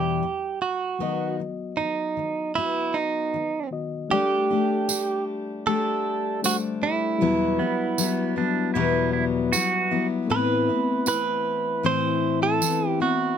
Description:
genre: acoustic pop.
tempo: 78 BPM.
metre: 4/4.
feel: straight.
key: E minor.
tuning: A4 = 438 Hz.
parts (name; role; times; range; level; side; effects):
direct-recorded clean electric guitar; melody; 0.0-13.4 s; D#4 to C5; -25 LUFS; right 6 dB; none.
bright reed electric piano; accompaniment; 0.0-13.4 s; D#3 to B5; -32 LUFS; left 3 dB; none.
picked steel-string acoustic guitar; accompaniment; 0.0-13.4 s; E2 to G4; -25 LUFS; left 5 dB; none.
tambourine; percussion; 4.9-12.8 s; none; -27 LUFS; right 8 dB; none.
pedal steel guitar; second line; 7.6-10.1 s; B3 to F#4; -26 LUFS; right 6 dB; none.
room: light reverb.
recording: close, detailed microphones.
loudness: -22 LUFS.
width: side -8 dB against mid.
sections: 0.0-4.1 A section; 4.1-13.4 B section.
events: none.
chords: 0.0 Em7; 1.0 B/D#; 4.1 Gsus2; 7.2 Emadd9; 10.3 Amadd9.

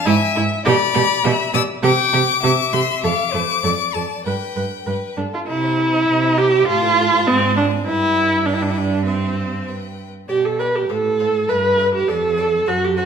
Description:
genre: quick classical-period movement for string quartet.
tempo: 100 BPM.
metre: 2/4.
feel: straight.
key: C major.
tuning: A4 = 435 Hz.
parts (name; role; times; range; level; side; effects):
clear violin; melody; 0.0-13.0 s; C5 to E6; -23 LUFS; left 10 dB; none.
rich violin; second line; 0.0-13.1 s; Ab4 to G5; -26 LUFS; left 4 dB; none.
rich viola; accompaniment; 0.1-13.0 s; C4 to B4; -18 LUFS; right 1 dB; none.
rich cello; bass; 0.1-13.1 s; F2 to C3; -22 LUFS; right 4 dB; none.
room: wet recital hall reverb, RT60 1.7 s.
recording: none.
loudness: -16 LUFS.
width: side -7 dB against mid.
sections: 0.0-5.5 A section; 5.5-13.1 B section.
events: none.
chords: 0.1 E/G#; 0.7 G/B; 1.8 C; 3.0 Dm/F; 4.3 G; 5.5 C; 6.7 F/A; 7.3 Ab7; 7.9 G; 9.1 C/G; 9.7 G; 10.3 G/B; 10.9 F/A (rootless); 11.5 Em/G; 12.1 Dm/F.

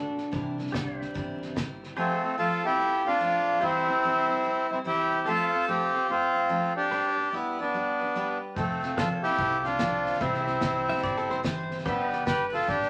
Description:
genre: honky-tonk and classic country.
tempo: 146 BPM.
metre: 4/4.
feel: swing 64% on 8ths.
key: unclear.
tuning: A4 = 436 Hz.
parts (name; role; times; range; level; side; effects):
pedal steel guitar; second line; 0.0-1.5, 10.9-11.8 s; D4 to E5; -36 LUFS; equal; none.
picked steel-string acoustic guitar; accompaniment; 0.0-12.9 s; C3 to C5; -38 LUFS; equal; none.
pedal steel guitar; sustained chords; 0.0-12.9 s; G4 to A5; -43 LUFS; equal; none.
upright bass; bass; 0.0-1.8, 8.6-12.9 s; F1 to C2; -43 LUFS; equal; none.
cloth-damped thuddy drum kit; drums; 0.2-1.9, 8.6-12.9 s; hi-hat, kick drum, snare drum; -37 LUFS; equal; none.
accordion; melody; 2.0-12.9 s; G3 to B4; -28 LUFS; equal; none.
room: wet studio reverb, RT60 0.5 s.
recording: vinyl crackle.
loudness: -27 LUFS.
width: mono.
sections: 0.0-2.0 A section; 2.0-12.9 B section.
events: pedal steel guitar solo 0.0-2.0.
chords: 0.3 C7; 2.0 F; 3.6 C; 5.3 F; 6.9 G; 8.6 F; 10.2 C; 11.9 G.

